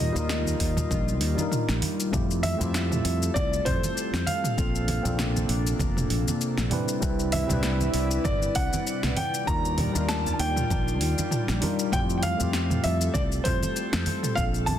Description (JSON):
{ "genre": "sunset chillout", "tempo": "98 BPM", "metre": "4/4", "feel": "swing 56% on 16ths", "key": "F major", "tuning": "A4 = 438 Hz", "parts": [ { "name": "clear grand piano", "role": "melody", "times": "0.0-14.8 s", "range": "C5 to Bb5", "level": "-31 LUFS", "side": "left 1 dB", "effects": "digital delay" }, { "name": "mellow tine electric piano", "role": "accompaniment", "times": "0.0-14.8 s", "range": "G3 to B4", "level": "-32 LUFS", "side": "equal", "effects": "overdrive, auto-pan, tape echo" }, { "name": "airy breathy pad", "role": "sustained chords", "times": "0.0-14.8 s", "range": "C3 to D5", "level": "-33 LUFS", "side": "equal", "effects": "chorus" }, { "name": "fretless electric bass", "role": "bass", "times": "0.0-14.8 s", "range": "F1 to F2", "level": "-28 LUFS", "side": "equal", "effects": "wide subtle chorus" }, { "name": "deep house drum kit", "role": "drums", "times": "0.2-14.8 s", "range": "hi-hat, shaker, snare drum, toms", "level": "-31 LUFS", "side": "equal", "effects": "overdrive, studio reverb" }, { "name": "congas", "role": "percussion", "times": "0.2-14.8 s", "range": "none", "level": "-33 LUFS", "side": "right 2 dB", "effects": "none" }, { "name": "electronic kick drum", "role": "drums", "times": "0.6-14.5 s", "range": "none", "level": "-30 LUFS", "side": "equal", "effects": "overdrive, studio reverb" } ], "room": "light reverb, digital ambience", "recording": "dense, heavily limited modern master", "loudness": "-23 LUFS", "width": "side -10 dB against mid", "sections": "0.0-14.8 A section", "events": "none", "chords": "0.0 Ebmaj9; 2.1 Fmaj9; 4.6 Bbmaj9; 6.7 Cmaj9; 9.2 Ebmaj9; 11.9 Fmaj9" }